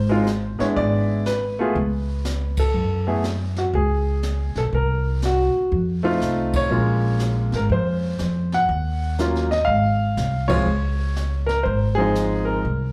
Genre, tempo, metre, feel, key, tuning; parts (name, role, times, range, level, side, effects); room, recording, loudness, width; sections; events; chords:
jazz piano trio; 121 BPM; 4/4; swing 66% on 8ths; Db major; A4 = 440 Hz
warm concert grand piano; melody; 0.0-12.9 s; F3 to Gb5; -25 LUFS; equal; slapback echo
upright bass; bass; 0.0-12.9 s; Ab1 to Gb2; -25 LUFS; equal
jazz brush drum kit; drums; 0.3-12.9 s; brushed snare drum, hi-hat, kick drum, ride cymbal, snare drum; -34 LUFS; equal
light reverb; live gig heard through the venue's PA, club reverb; -22 LUFS; mono
0.0-12.9 A section
band accent 2.5, 6.5, 10.4; drum fill 6.2-6.7
0.0 Dbmaj7(no3) (rootless); 1.8 Aadd9/C# (rootless); 2.7 Gbmadd9; 4.7 Bbsus2/C; 5.7 F7; 6.7 Bbm9; 8.7 Ebm9; 9.7 Ab; 10.7 Dbmaj9